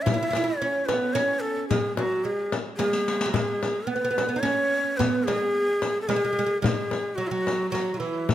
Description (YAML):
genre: Arabic maqam ensemble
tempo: 109 BPM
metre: 3/4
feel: straight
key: E maqam rast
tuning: A4 = 443 Hz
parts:
  - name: breathy bright ney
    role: melody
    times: 0.0-8.3 s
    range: E4 to E5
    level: -26 LUFS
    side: left 1 dB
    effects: none
  - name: oud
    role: second line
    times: 0.0-8.3 s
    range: E3 to E4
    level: -29 LUFS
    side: right 4 dB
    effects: tape echo
  - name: frame drum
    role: percussion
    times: 0.1-8.3 s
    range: none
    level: -28 LUFS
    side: left 4 dB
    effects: none
  - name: riq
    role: percussion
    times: 0.1-8.3 s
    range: none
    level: -34 LUFS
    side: left 2 dB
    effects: none
room: moderate recital hall reverb, RT60 1.7 s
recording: close, detailed microphones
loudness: -23 LUFS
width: side -12 dB against mid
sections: 0.0-8.3 A section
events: drum fill 2.8-3.4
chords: none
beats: | 0.07 0.61 1.16 | 1.71 2.26 2.81 | 3.35 3.90 4.45 | 5.00 5.55 6.10 | 6.64 7.19 7.74 | 8.29